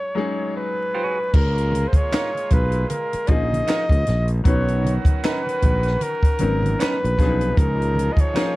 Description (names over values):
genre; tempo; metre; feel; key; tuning
R&B, neo-soul; 77 BPM; 4/4; swing 58% on 16ths; Db mixolydian; A4 = 445 Hz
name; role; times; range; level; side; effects
warm flugelhorn; melody; 0.0-8.6 s; Bb4 to Eb5; -24 LUFS; equal; plate reverb
clear concert grand piano; accompaniment; 0.0-8.6 s; Bb2 to Cb5; -28 LUFS; left 4 dB; none
semi-hollow electric guitar; second line; 0.6-8.5 s; Db4 to Db5; -28 LUFS; right 4 dB; analog chorus, plate reverb
warm horn section; stabs; 1.3-8.6 s; Bb2 to Ab4; -33 LUFS; right 5 dB; slapback echo, plate reverb
sustaining fretless electric bass; bass; 1.3-8.2 s; Ab1 to Db2; -21 LUFS; equal; none
compact cocktail drum kit; drums; 1.3-8.6 s; crash cymbal, handclaps, hi-hat, kick drum, snare drum; -19 LUFS; equal; none
congas; percussion; 1.3-8.6 s; none; -31 LUFS; right 2 dB; none
room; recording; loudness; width
light reverb; dark, warm production, vinyl crackle; -18 LUFS; side -19 dB against mid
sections
0.0-1.3 A section; 1.3-8.6 B section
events
break 0.0-1.3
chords
0.0 Ab7sus4; 1.3 Db69; 4.5 Cbmaj9; 7.6 Db69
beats
0.56 | 1.34 2.12 2.90 3.67 | 4.45 5.23 6.01 6.79 | 7.57 8.35